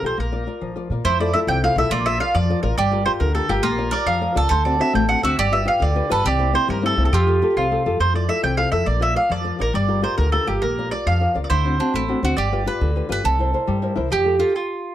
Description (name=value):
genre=italian folk, Italian serenade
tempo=138 BPM (dotted quarters)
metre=6/8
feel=straight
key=F major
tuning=A4 = 441 Hz
part: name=mandolin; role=melody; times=0.0-14.9 s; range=F4 to G5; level=-22 LUFS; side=right 2 dB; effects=none
part: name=nylon-string guitar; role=accompaniment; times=0.0-14.5 s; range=C3 to D5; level=-24 LUFS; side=left 4 dB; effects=none
part: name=upright bass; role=bass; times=0.0-14.4 s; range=G1 to Bb2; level=-22 LUFS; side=equal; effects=none
part: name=bowl-back mandolin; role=second line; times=1.1-7.8, 11.5-14.5 s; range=D4 to B4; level=-25 LUFS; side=right 4 dB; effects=none
room=light reverb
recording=close, detailed microphones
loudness=-17 LUFS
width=side -12 dB against mid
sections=0.0-1.0 A section; 1.0-8.0 B section; 8.0-14.9 B section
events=stop 14.6-14.9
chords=0.2 Bb; 1.0 Fmaj7; 1.9 Bb; 2.8 Gm7; 3.6 Bb; 4.5 D7; 5.4 G7; 6.3 C7; 7.1 Fadd9; 8.0 Fmaj7; 8.9 Bb; 9.7 Gm7; 10.6 Bb; 11.5 D7; 12.4 G7; 13.3 C7; 14.1 Fadd9